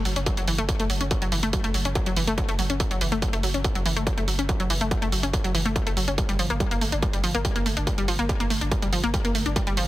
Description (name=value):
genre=driving peak-time techno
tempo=142 BPM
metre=4/4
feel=straight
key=F# phrygian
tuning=A4 = 443 Hz
part: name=saturated sub bass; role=bass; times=0.0-9.9 s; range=F#1 to G1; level=-30 LUFS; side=equal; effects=tube saturation, sidechain pumping, low-pass filter
part: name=analog pluck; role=riff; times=0.1-9.8 s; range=E3 to D4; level=-27 LUFS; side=left 1 dB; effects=chorus, sidechain pumping, ping-pong delay
part: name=electronic hi-hat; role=drums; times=0.1-9.9 s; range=none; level=-31 LUFS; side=right 2 dB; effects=sidechain pumping on hats, sidechain pumping on cymbals
part: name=electronic kick drum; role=drums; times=0.3-9.6 s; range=none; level=-26 LUFS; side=equal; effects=distortion
room=digital ambience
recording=heavily compressed radio sound, multiband compression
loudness=-22 LUFS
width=side -16 dB against mid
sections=0.0-9.9 A section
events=none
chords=0.0 F#m; 6.2 Gm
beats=0.27 0.69 | 1.11 1.53 1.96 2.38 | 2.80 3.22 3.65 4.07 | 4.49 4.91 5.33 5.76 | 6.18 6.60 7.03 7.45 | 7.87 8.29 8.71 9.14 | 9.56